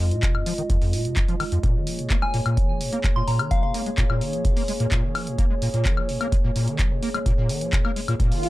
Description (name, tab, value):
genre	acid house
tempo	128 BPM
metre	4/4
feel	straight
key	unclear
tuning	A4 = 438 Hz
part	dark analog pad	sustained chords	0.0-8.5 s	Ab3 to Eb5	-30 LUFS	right 1 dB	wide subtle chorus, sidechain pumping
part	acid bass, square	riff	0.0-8.5 s	F2 to Bb3	-26 LUFS	equal	overdrive, ensemble chorus, cassette tape, sidechain pumping, digital delay
part	punchy analog drum machine	drums	0.1-8.5 s	handclaps, hi-hat, woodblock	-30 LUFS	left 2 dB	none
part	electronic kick drum	drums	0.2-8.3 s	none	-23 LUFS	equal	none
part	soft synth bell	melody	2.2-3.7 s	F5 to C6	-30 LUFS	left 2 dB	chorus, phaser, digital delay
part	swell	sound effects	8.3-8.5 s	none	-26 LUFS	right 2 dB	none
room	little or no reverb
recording	dark, warm production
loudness	-20 LUFS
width	side -17 dB against mid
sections	0.0-8.5 A section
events	swell 8.3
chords	0.0 Fm7; 1.6 Bbm7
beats	0.23 0.70 1.17 | 1.64 2.10 2.57 3.04 | 3.51 3.98 4.45 4.92 | 5.38 5.85 6.32 6.79 | 7.26 7.73 8.20